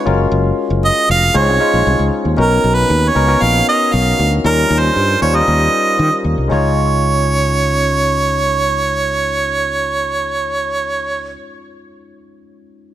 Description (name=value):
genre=polished 1980s jazz-funk pop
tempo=116 BPM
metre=4/4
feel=straight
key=Db major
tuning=A4 = 440 Hz
part: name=clear harmonica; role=melody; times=0.0-11.4 s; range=Bb4 to F5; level=-15 LUFS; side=right 3 dB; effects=none
part: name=barky tine electric piano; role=accompaniment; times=0.0-12.9 s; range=G3 to Db5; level=-19 LUFS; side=left 3 dB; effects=wide subtle chorus
part: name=fretless electric bass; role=bass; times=0.1-11.4 s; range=F1 to Eb3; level=-17 LUFS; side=equal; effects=none
room=light reverb, small room ambience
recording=none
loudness=-12 LUFS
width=side -12 dB against mid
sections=0.0-2.4 A section; 2.4-6.5 B section; 6.5-10.6 C section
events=none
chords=0.1 Gbmaj7; 1.4 Dbmaj9; 2.4 Cbmaj9; 4.4 Eb7; 6.5 Db